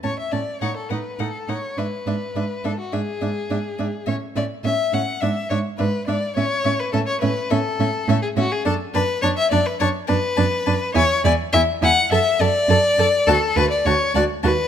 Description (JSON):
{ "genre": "quick classical-period movement for string quartet", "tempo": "104 BPM", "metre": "4/4", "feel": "straight", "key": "A major", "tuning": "A4 = 440 Hz", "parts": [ { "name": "warm violin", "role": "melody", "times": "0.0-14.5 s", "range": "E5 to A5", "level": "-29 LUFS", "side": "left 10 dB", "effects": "none" }, { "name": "rich violin", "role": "second line", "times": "0.0-14.7 s", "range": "F#4 to F#5", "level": "-21 LUFS", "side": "left 3 dB", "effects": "none" }, { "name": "warm viola", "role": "accompaniment", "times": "0.0-14.5 s", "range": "C#4 to A4", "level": "-26 LUFS", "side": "right 2 dB", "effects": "none" }, { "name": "warm cello", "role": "bass", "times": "0.0-14.5 s", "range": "D2 to A2", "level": "-24 LUFS", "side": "right 4 dB", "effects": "none" } ], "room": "moderate recital hall reverb, RT60 1.7 s", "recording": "close, detailed microphones", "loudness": "-18 LUFS", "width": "side -9 dB against mid", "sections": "0.0-14.7 A section", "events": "none", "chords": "0.0 A; 0.6 B9/A; 1.8 E7/G#; 4.1 A; 5.2 E7/G#; 6.4 A; 8.7 D/F#; 11.0 E; 12.1 D/F#; 13.3 D", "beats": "0.04 0.62 1.20 | 1.78 2.36 2.94 3.51 | 4.08 4.65 5.23 5.80 | 6.37 6.94 7.51 8.08 | 8.66 9.23 9.80 10.38 | 10.96 11.54 12.12 12.70 | 13.28 13.86 14.44" }